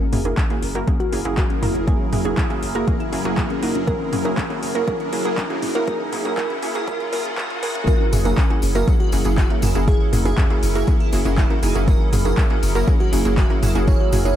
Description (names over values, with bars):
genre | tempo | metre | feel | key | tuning
progressive house | 120 BPM | 4/4 | straight | F# mixolydian | A4 = 440 Hz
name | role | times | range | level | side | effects
evolving wavetable pad | sustained chords | 0.0-14.4 s | F#3 to A#4 | -27 LUFS | right 1 dB | phaser, built-in reverb, sidechain pumping
glassy wavetable pluck | arpeggios | 0.0-14.3 s | C#4 to C#5 | -26 LUFS | equal | chorus, cassette tape, sidechain pumping, dub echo
wide unison pluck | stabs | 0.0-14.4 s | A#3 to A#4 | -26 LUFS | right 2 dB | cassette tape, sidechain pumping, dub echo
riser | sound effects | 0.0-7.9 s | none | -34 LUFS | equal | none
saturated sub bass | bass | 0.1-14.3 s | F#1 | -24 LUFS | equal | sidechain pumping
deep house drum kit | drums | 0.1-14.4 s | handclaps, hi-hat | -31 LUFS | left 1 dB | overdrive, sidechain pumping on hats, small room ambience
electronic toms and congas | percussion | 0.1-14.4 s | none | -25 LUFS | right 1 dB | sidechain pumping on toms, small room ambience, sidechain pumping on perc
electronic kick drum | drums | 0.4-14.0 s | none | -19 LUFS | equal | overdrive, small room ambience
tambourine | percussion | 7.9-14.4 s | none | -36 LUFS | left 2 dB | none
room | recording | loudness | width
light reverb | high-pass filter | -17 LUFS | side -11 dB against mid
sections
0.0-7.9 A section; 7.9-14.4 B section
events
build-up 0.0-7.9; riser 0.0-7.9; filter sweep on synth arpeggio sound 0.0-7.9; filter sweep 0.0-7.9; drop 7.9-14.4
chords
0.0 F#9